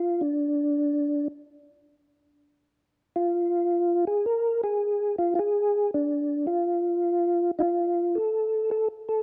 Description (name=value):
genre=jazz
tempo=108 BPM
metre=4/4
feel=swing 67% on 8ths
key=unclear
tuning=A4 = 437 Hz
part: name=percussive tonewheel organ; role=solo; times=0.0-9.2 s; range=D4 to Bb4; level=-26 LUFS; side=equal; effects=slow rotary speaker, chorus vibrato
room=light reverb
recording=dry, close 1970s-style studio recording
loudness=-26 LUFS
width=mono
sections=0.0-9.2 A section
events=none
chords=none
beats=0.38 | 0.94 1.50 2.05 2.61 | 3.17 3.72 4.28 4.83 | 5.39 5.95 6.50 7.06 | 7.61 8.17 8.73